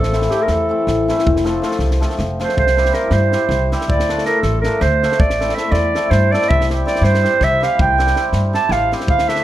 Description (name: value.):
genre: balkan folk, Balkan wedding band.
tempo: 322 BPM (eighths).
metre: 7/8.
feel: straight.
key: C mixolydian.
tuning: A4 = 440 Hz.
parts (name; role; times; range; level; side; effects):
warm clarinet; melody; 0.0-9.4 s; G4 to A5; -17 LUFS; right 2 dB; none.
upright bass; bass; 0.0-9.4 s; F1 to G2; -19 LUFS; equal; none.
compact cocktail drum kit; percussion; 0.0-9.4 s; kick drum, snare drum; -23 LUFS; equal; none.
cimbalom; accompaniment; 0.1-9.4 s; E3 to A4; -20 LUFS; left 2 dB; none.
room: moderate recital hall reverb, RT60 1.2 s.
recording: none.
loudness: -14 LUFS.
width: side -13 dB against mid.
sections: 0.0-9.4 A section.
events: clarinet solo 0.0-9.4.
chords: 0.0 Am; 1.3 F; 2.6 C; 3.9 Dm; 5.2 Am.